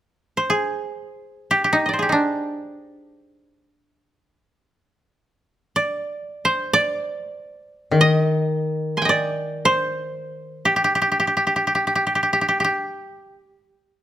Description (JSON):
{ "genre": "japanese traditional", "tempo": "free time", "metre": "none", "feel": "none", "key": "G miyako bushi", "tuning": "A4 = 440 Hz", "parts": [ { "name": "koto", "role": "melody", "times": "0.4-14.0 s", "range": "D4 to C6", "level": "-19 LUFS", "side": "right 1 dB", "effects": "none" }, { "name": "koto", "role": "accompaniment", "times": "7.9-10.9 s", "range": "Eb3", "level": "-21 LUFS", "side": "left 2 dB", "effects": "none" } ], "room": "light reverb", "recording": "close, detailed microphones", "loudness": "-19 LUFS", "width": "side -12 dB against mid", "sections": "0.0-14.0 A section", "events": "none", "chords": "none" }